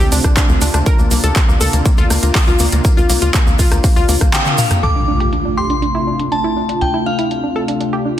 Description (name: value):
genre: progressive house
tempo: 121 BPM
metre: 4/4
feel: straight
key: D minor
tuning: A4 = 440 Hz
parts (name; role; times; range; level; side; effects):
- warm analog pad; sustained chords; 0.0-8.2 s; C3 to F4; -21 LUFS; equal; chorus, sidechain pumping
- analog pluck; arpeggios; 0.0-8.1 s; Bb3 to Bb4; -21 LUFS; left 1 dB; chorus, sidechain pumping, tape echo
- tight sequencer bass; bass; 0.0-8.2 s; C2 to D2; -16 LUFS; equal; sidechain pumping
- tube shaker; percussion; 0.0-4.8 s; none; -26 LUFS; right 3 dB; none
- big-room dance drum kit; drums; 0.1-7.9 s; handclaps, hi-hat, rim click, toms; -19 LUFS; equal; overdrive, sidechain pumping on hats, low-pass filter on hats, low-pass filter on snare, sidechain pumping on toms, low-pass filter on toms
- electronic kick drum; drums; 0.2-4.3 s; none; -13 LUFS; equal; overdrive
- glassy synth bell; melody; 4.3-8.0 s; F5 to D6; -20 LUFS; left 2 dB; chorus, vintage 12-bit sampler grit, ping-pong delay
- impact; sound effects; 4.8-6.8 s; none; -21 LUFS; equal; none
room: light reverb, digital ambience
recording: dense, heavily limited modern master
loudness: -12 LUFS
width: side -11 dB against mid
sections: 0.0-4.8 A section; 4.8-8.2 B section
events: drum fill 4.3-4.8; band accent 4.3; impact 4.8-6.8; filter sweep on drum 4.8-8.2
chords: 0.0 Dm7; 0.9 Bbadd9; 4.8 Dm7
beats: 0.37 | 0.86 1.36 1.85 2.35 | 2.85 3.34 3.84 4.33 | 4.83 5.33 5.82 6.32 | 6.81 7.31 7.81